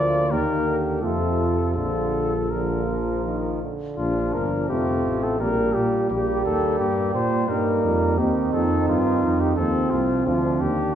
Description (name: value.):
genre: classical, brass quintet.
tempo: 85 BPM.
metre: 3/4.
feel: rubato.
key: Bb major.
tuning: A4 = 435 Hz.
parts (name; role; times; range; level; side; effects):
mellow trumpet; melody; 0.0-10.9 s; F4 to D5; -26 LUFS; left 3 dB; none.
dark trumpet; second line; 0.0-10.9 s; C4 to G4; -29 LUFS; right 4 dB; none.
brilliant trombone; accompaniment; 0.0-10.7 s; C3 to A3; -29 LUFS; right 2 dB; none.
warm French horn; accompaniment; 0.0-10.7 s; F3 to D4; -27 LUFS; left 1 dB; none.
bright bass trombone; bass; 0.0-10.9 s; F1 to Bb2; -26 LUFS; right 1 dB; none.
room: wet recital hall reverb, RT60 1.4 s.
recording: heard from further back in the room.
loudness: -20 LUFS.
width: side -9 dB against mid.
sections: 0.0-4.0 A section; 4.0-10.9 B section.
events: none.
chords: 0.3 Eb; 1.0 F; 1.8 Bb; 5.4 Gm/Bb; 6.1 Eb/Bb; 8.2 Cm/Eb; 9.6 F7/Eb; 10.3 F7sus2/D.